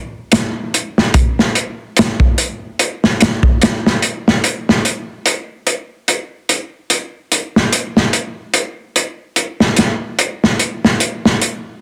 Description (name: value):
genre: trip hop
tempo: 73 BPM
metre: 4/4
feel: swing 56% on 16ths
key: none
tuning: none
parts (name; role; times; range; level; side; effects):
- crunchy breakbeat drum kit; drums; 0.3-11.6 s; hi-hat, kick drum, snare drum; -15 LUFS; equal; soft clipping on snare
room: light reverb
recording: dense, heavily limited modern master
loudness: -16 LUFS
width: mono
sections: 0.0-4.4 A section; 4.4-11.8 B section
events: none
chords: none